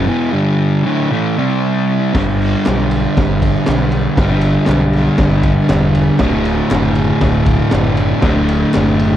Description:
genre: garage rock duo or trio.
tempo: 118 BPM.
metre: 4/4.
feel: straight.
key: unclear.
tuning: A4 = 439 Hz.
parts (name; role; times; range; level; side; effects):
fuzz guitar; riff; 0.0-9.2 s; D2 to C4; -13 LUFS; equal; distortion.
growling picked electric bass; bass; 0.0-9.1 s; D1 to B1; -19 LUFS; equal; overdrive.
crunchy breakbeat drum kit; drums; 2.1-9.1 s; crash cymbal, kick drum, ride cymbal, snare drum; -18 LUFS; equal; none.
group handclap; percussion; 2.7-8.9 s; none; -33 LUFS; left 2 dB; none.
room: moderate small room reverb, RT60 0.5 s.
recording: cassette tape.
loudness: -12 LUFS.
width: side -11 dB against mid.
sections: 0.0-2.1 A section; 2.1-9.2 B section.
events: none.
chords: 0.4 G5; 0.9 D5; 1.4 C5; 2.1 G; 6.2 D.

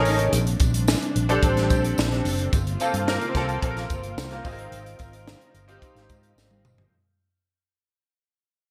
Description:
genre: polished 1980s jazz-funk pop.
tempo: 109 BPM.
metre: 4/4.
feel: straight.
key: unclear.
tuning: A4 = 439 Hz.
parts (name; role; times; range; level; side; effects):
bright baby grand piano; accompaniment; 0.0-6.9 s; Bb3 to A#4; -28 LUFS; equal; ensemble chorus.
warm studio string section; sustained chords; 0.0-6.9 s; C3 to F4; -34 LUFS; equal; none.
mellow fretless electric bass; bass; 0.0-6.9 s; Gb1 to Ab2; -28 LUFS; equal; none.
crisp fusion drum kit; drums; 0.1-6.9 s; hi-hat, kick drum, snare drum, toms; -28 LUFS; equal; gated reverb.
tambourine; percussion; 0.1-6.8 s; none; -41 LUFS; equal; none.
room: moderate plate reverb, RT60 1.3 s.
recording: bright 1980s-style digital production.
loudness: -23 LUFS.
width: mono.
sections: 0.0-6.9 A section.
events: fade-out 0.0-6.9; drum fill 6.4-6.9.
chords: 0.3 Bbmaj13; 2.5 Gm11; 4.4 Ab6.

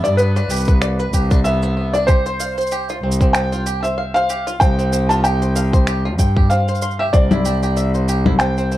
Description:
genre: folktronica.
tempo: 95 BPM.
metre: 4/4.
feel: swing 56% on 16ths.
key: unclear.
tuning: A4 = 440 Hz.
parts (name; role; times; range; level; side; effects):
felt-muted upright piano; melody; 0.0-8.8 s; B4 to A5; -21 LUFS; equal; vintage 12-bit sampler grit, tape echo.
bluegrass banjo; arpeggios; 0.0-8.8 s; B3 to C6; -24 LUFS; equal; tape echo.
muted cello; bass; 0.0-8.8 s; C2 to G2; -19 LUFS; equal; none.
electronic shaker, finger snaps and congas; drums; 0.0-8.8 s; none; -24 LUFS; left 2 dB; none.
electronic kick drum; drums; 0.7-8.4 s; none; -14 LUFS; equal; none.
room: moderate studio ambience, RT60 0.5 s.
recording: dark, warm production.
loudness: -15 LUFS.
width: side -14 dB against mid.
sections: 0.0-8.8 A section.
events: none.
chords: 0.0 G/C; 2.1 Fsus2/C; 7.1 C.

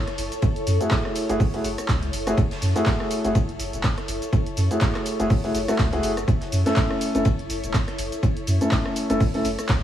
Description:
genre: deep house.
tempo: 123 BPM.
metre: 4/4.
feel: swing 56% on 16ths.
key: F# minor.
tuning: A4 = 440 Hz.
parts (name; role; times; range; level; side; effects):
granular cloud pad; texture; 0.0-9.8 s; E4 to C#5; -32 LUFS; left 1 dB; built-in reverb, sidechain pumping.
punchy analog drum machine; drums; 0.1-9.8 s; handclaps, hi-hat, rim click, shaker; -31 LUFS; equal; none.
warm sub bass; bass; 0.2-9.8 s; E1 to F#2; -26 LUFS; equal; sidechain pumping.
gated 80s drum kit; drums; 0.2-9.8 s; hi-hat, ride cymbal, snare drum; -39 LUFS; left 1 dB; sidechain pumping on cymbals, high-pass filter on cymbals, sidechain pumping on hats, high-pass filter on hats, high-pass filter on snare, high-pass filter on room.
electronic kick drum; drums; 0.4-9.8 s; none; -22 LUFS; equal; none.
felt-muted upright piano; stabs; 0.8-9.4 s; A3 to A4; -25 LUFS; equal; sidechain pumping, low-pass filter, tape echo.
room: light reverb.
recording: vinyl crackle.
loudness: -20 LUFS.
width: side -11 dB against mid.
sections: 0.0-9.8 A section.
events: filter sweep on felt piano 0.0-9.8.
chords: 0.0 F#m9; 6.3 A.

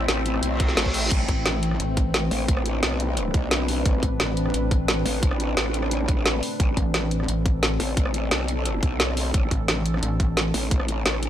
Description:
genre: dark technical drum and bass.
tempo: 175 BPM.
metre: 4/4.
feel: straight.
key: A minor.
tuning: A4 = 440 Hz.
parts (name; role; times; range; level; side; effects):
deep dark ambient pad; sustained chords; 0.0-11.3 s; A3 to E5; -29 LUFS; left 2 dB; chorus, built-in reverb, sidechain pumping.
growl bass; bass; 0.0-11.3 s; A1 to B1; -26 LUFS; equal; chorus, overdrive.
drum and bass drum kit; drums; 0.1-11.3 s; crash cymbal, hi-hat, rim click, snare drum; -25 LUFS; equal; none.
reverse cymbal; sound effects; 0.5-1.1 s; none; -29 LUFS; equal; none.
electronic kick drum; drums; 0.6-10.8 s; none; -22 LUFS; equal; none.
pulsing pluck wobble bass; bass; 1.3-10.5 s; A1; -25 LUFS; equal; chorus.
room: little or no reverb.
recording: none.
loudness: -21 LUFS.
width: side -11 dB against mid.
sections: 0.0-11.3 A section.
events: reverse cymbal 0.5-1.1.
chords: 0.0 Amadd9.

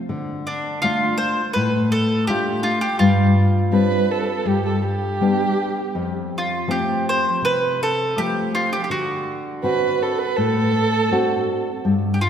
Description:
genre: italian folk, Italian serenade.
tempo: 82 BPM.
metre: 4/4.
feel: straight.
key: unclear.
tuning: A4 = 443 Hz.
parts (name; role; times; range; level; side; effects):
nylon-string guitar; accompaniment; 0.1-12.3 s; F2 to F#4; -20 LUFS; left 2 dB; none.
mandolin; melody; 0.5-12.3 s; D4 to C5; -22 LUFS; right 1 dB; none.
dark violin; second line; 3.7-11.8 s; G4 to B4; -22 LUFS; right 5 dB; none.
room: wet concert hall reverb, RT60 2.4 s.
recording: recorded in a church or concert hall.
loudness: -18 LUFS.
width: side -8 dB against mid.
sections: 0.0-12.3 A section.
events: none.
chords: 0.1 Dm; 3.0 Gsus4; 4.5 G; 5.9 F; 8.9 D7.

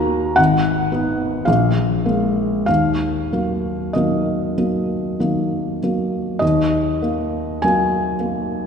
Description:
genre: classical, romantic nocturne for solo piano.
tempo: 46-61 BPM.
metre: 3/4.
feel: rubato.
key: Eb minor.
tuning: A4 = 441 Hz.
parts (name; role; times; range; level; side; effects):
felt-muted upright piano; solo; 0.0-8.7 s; Ab1 to Bb5; -17 LUFS; equal; none.
room: wet church reverb, RT60 3.0 s.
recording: recorded in a church or concert hall.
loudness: -17 LUFS.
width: side -6 dB against mid.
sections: 0.0-6.4 A section; 6.4-8.7 A section.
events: none.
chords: 0.4 Abm; 1.5 Bb5; 2.7 Ebm.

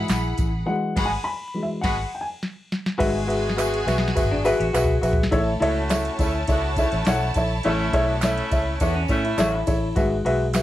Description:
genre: uptempo 1960s-style soul.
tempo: 103 BPM.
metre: 4/4.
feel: straight.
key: A major.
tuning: A4 = 440 Hz.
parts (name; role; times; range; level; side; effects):
rich studio violin section; second line; 0.0-9.9 s; E4 to B5; -32 LUFS; left 1 dB; none.
dark upright piano; accompaniment; 0.0-10.6 s; G#2 to B5; -23 LUFS; left 1 dB; none.
electric guitar through a small old amp; riff; 0.0-0.5, 4.3-5.3, 8.8-9.9 s; B3 to F#4; -30 LUFS; left 1 dB; none.
vintage muted fingered electric bass; bass; 0.0-10.6 s; G#1 to A2; -26 LUFS; equal; tube saturation.
soft vintage rhythm box; drums; 0.1-10.6 s; crash cymbal, hi-hat, kick drum, ride cymbal, snare drum, toms; -26 LUFS; equal; overdrive.
handclaps and tambourine; percussion; 0.1-10.6 s; none; -35 LUFS; right 5 dB; none.
warm horn section; second line; 1.0-9.6 s; G#3 to F#4; -31 LUFS; right 1 dB; none.
room: light reverb.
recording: vinyl crackle.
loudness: -20 LUFS.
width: side -14 dB against mid.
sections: 0.0-3.0 A section; 3.0-5.3 B section; 5.3-10.6 C section.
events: upright piano solo 0.0-3.0; band accent 0.7-3.0; drum fill 2.4-3.0, 3.0-5.3.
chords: 0.0 Eadd9; 3.0 Eadd9/G#; 5.3 A; 10.0 Eadd9/G#.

